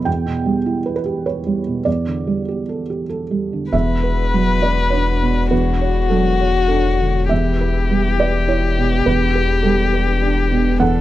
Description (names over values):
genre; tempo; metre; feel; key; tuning
neoclassical piano and strings; 101 BPM; 3/4; rubato; E dorian; A4 = 440 Hz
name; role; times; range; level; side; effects
felt-muted upright piano; accompaniment; 0.0-11.0 s; E2 to G5; -19 LUFS; right 4 dB; none
rich violin; melody; 3.7-11.0 s; F#4 to B4; -20 LUFS; left 6 dB; none
dark chamber string section; sustained chords; 3.7-11.0 s; D4 to C#5; -30 LUFS; left 2 dB; none
warm sub bass; bass; 3.7-11.0 s; E1; -19 LUFS; left 1 dB; none
room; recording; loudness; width
little or no reverb; dry, close 1970s-style studio recording; -16 LUFS; side -14 dB against mid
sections
0.0-3.7 A section; 3.7-11.0 B section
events
none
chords
0.1 Em; 1.9 Gsus2/E; 3.7 Bm/E; 5.5 Dmaj7/E; 7.3 Em; 9.1 G/E